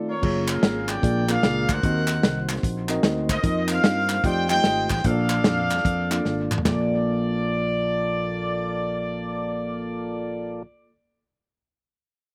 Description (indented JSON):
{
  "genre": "uptempo gospel",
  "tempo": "149 BPM",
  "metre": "4/4",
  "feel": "swing 65% on 8ths",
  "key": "Bb major",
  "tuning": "A4 = 441 Hz",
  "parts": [
    { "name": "mellow tine electric piano", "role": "accompaniment", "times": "0.0-10.7 s", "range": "Bb1 to Eb5", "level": "-30 LUFS", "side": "equal", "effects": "none" },
    { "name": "mellow tonewheel organ", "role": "sustained chords", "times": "0.0-10.6 s", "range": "Eb3 to Eb5", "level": "-35 LUFS", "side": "equal", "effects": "slow rotary speaker" },
    { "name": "warm horn section", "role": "melody", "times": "0.1-10.6 s", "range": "F4 to G5", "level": "-29 LUFS", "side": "equal", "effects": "slapback echo" },
    { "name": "fingered electric bass", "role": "bass", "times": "0.2-10.6 s", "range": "Gb1 to G2", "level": "-31 LUFS", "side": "equal", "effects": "none" },
    { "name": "warm soul drum kit", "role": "drums", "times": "0.2-6.8 s", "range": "crash cymbal, hi-hat, kick drum, snare drum, toms", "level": "-25 LUFS", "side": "equal", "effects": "none" },
    { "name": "group handclap", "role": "percussion", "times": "0.5-6.9 s", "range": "none", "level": "-33 LUFS", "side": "equal", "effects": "none" }
  ],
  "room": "little or no reverb",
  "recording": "recorded outdoors, with no room sound",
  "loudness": "-23 LUFS",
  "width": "mono",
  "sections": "0.2-6.7 A section; 6.7-9.9 B section",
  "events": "break 0.0; drum fill 6.2-6.7",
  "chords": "0.2 Gbmaj9; 1.0 Bb7; 1.8 Ebm6; 3.4 F7sus4; 4.2 F13; 5.0 Bbmaj7",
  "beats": "| 0.23 0.63 1.03 1.43 | 1.83 2.23 2.63 3.04 | 3.44 3.84 4.24 4.64 | 5.04 5.45 5.85 6.25 | 6.65 7.05 7.46 7.86 | 8.26 8.66 9.07 9.47"
}